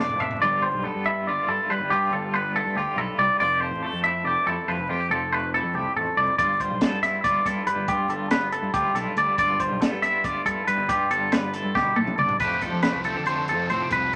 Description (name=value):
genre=math rock and midwest emo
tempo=280 BPM (eighths)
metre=7/8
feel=straight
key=unclear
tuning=A4 = 440 Hz
part: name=twangy electric guitar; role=accompaniment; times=0.0-14.2 s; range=F2 to G4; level=-33 LUFS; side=equal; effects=tremolo
part: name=twangy electric guitar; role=arpeggios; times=0.0-14.2 s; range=G4 to E5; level=-25 LUFS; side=equal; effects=none
part: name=fuzz fingered electric bass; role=bass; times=0.0-14.1 s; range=F1 to F3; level=-35 LUFS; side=equal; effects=overdrive
part: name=compact cocktail drum kit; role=drums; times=0.1-0.4, 6.4-14.2 s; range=hi-hat, kick drum, snare drum, toms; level=-30 LUFS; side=equal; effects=none
part: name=overdriven semi-hollow guitar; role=riff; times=12.4-14.2 s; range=F2 to C4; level=-35 LUFS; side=equal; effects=none
room=moderate studio reverb, RT60 0.7 s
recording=vinyl crackle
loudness=-24 LUFS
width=mono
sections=0.4-12.4 A section; 12.4-14.2 B section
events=drum fill 0.0-0.4, 11.8-12.4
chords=0.4 G13; 3.4 Fmaj9; 6.4 G13; 12.4 F69